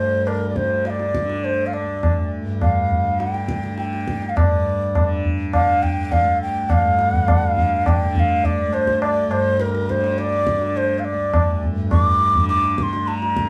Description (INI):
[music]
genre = indian classical, Hindustani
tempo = 103 BPM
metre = 4/4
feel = straight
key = D raga malkauns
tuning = A4 = 440 Hz
[part]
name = breathy bansuri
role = melody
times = 0.0-13.5 s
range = Bb4 to D6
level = -23 LUFS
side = equal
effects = none
[part]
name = tanpura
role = drone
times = 0.0-13.5 s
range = D2 to D3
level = -27 LUFS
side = equal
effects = none
[part]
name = tabla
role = percussion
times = 0.3-13.5 s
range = none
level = -23 LUFS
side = equal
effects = none
[sound]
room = wet studio reverb, RT60 0.7 s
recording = band playing live in one room, small room ambience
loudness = -20 LUFS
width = mono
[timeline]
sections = 0.0-4.4 A section; 4.4-13.5 B section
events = none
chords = none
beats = 0.27 0.85 1.44 | 2.02 2.61 3.19 3.78 | 4.36 4.95 5.53 6.11 | 6.70 7.28 7.86 8.44 | 9.02 9.60 10.18 10.76 | 11.34 11.92 12.50 13.07